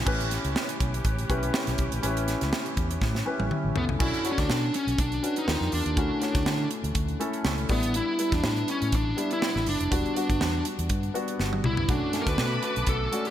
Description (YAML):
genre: polished 1980s jazz-funk pop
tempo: 122 BPM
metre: 4/4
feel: swing 54% on 16ths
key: unclear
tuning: A4 = 441 Hz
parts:
  - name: warm concert grand piano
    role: accompaniment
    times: 0.0-13.3 s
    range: G3 to E5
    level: -31 LUFS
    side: left 2 dB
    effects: analog chorus
  - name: warm studio string section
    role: sustained chords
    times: 0.0-4.0, 11.9-13.3 s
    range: A3 to D6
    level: -36 LUFS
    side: right 1 dB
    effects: none
  - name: vintage muted fingered electric bass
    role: bass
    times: 0.0-13.1 s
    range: E1 to D3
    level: -30 LUFS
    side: equal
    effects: none
  - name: crisp fusion drum kit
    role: drums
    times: 0.1-13.3 s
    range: crash cymbal, hi-hat, kick drum, snare drum, toms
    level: -29 LUFS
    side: right 1 dB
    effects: none
  - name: bluesy overdriven lead guitar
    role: melody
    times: 3.8-13.3 s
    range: B3 to B4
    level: -29 LUFS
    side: equal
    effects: distortion, ping-pong delay
room: light reverb, studio reverb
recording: bright 1980s-style digital production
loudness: -24 LUFS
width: side -11 dB against mid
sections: 0.1-4.0 A section; 4.0-13.3 B section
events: drum fill 3.0-4.0, 11.4-11.9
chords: 0.1 A9; 4.0 Bm7; 5.5 D#maj7; 6.0 Dmaj7; 7.7 A7sus4; 9.9 Em7; 11.9 Bm7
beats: | 0.07 0.56 1.05 1.54 | 2.03 2.53 3.02 3.51 | 4.00 4.50 4.99 5.48 | 5.97 6.47 6.96 7.45 | 7.95 8.44 8.93 9.42 | 9.92 10.41 10.90 11.39 | 11.89 12.38 12.87